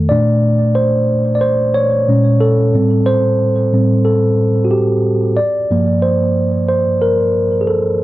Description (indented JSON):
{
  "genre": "R&B",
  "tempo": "91 BPM",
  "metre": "4/4",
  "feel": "swing 55% on 16ths",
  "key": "G minor",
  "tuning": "A4 = 440 Hz",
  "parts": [
    { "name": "mellow tine electric piano", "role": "solo", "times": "0.0-8.0 s", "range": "F2 to D5", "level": "-12 LUFS", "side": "equal", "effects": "analog delay" }
  ],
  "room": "moderate studio ambience, RT60 0.5 s",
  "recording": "dark, warm production",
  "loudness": "-12 LUFS",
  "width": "side -16 dB against mid",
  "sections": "0.1-8.0 A section",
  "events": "tine electric piano solo 0.1-8.0",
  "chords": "0.1 Bbmaj7; 2.1 Bbm7; 2.7 Am7; 5.4 Gm7",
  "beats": "| 0.10 0.76 1.42 2.08 | 2.73 3.39 4.05 4.71 | 5.37 6.03 6.69 7.35 | 8.01"
}